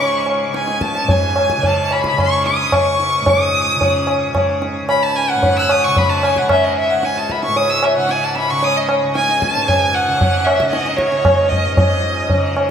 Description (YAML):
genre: indian classical, Hindustani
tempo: 112 BPM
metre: 4/4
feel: straight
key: unclear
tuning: A4 = 441 Hz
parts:
  - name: clear violin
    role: melody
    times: 0.0-12.5 s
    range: C#5 to F#6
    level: -17 LUFS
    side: equal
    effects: diffuse ambient delay
  - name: tanpura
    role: drone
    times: 0.0-12.7 s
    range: C#2 to C#3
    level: -24 LUFS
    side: equal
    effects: none
  - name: tabla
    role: percussion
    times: 0.3-12.7 s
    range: none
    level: -17 LUFS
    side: equal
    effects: none
room: wet lush hall reverb, RT60 2.8 s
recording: dreamy mix soaked in reverb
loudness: -13 LUFS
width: side -8 dB against mid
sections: 0.0-11.8 A section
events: speeding up 0.0-12.7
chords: none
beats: 0.54 | 1.09 1.63 2.18 2.72 | 3.27 3.81 4.35 4.89 | 5.43 5.96 6.50 7.03 | 7.56 8.10 8.62 9.15 | 9.68 10.21 10.73 11.25 | 11.78 12.29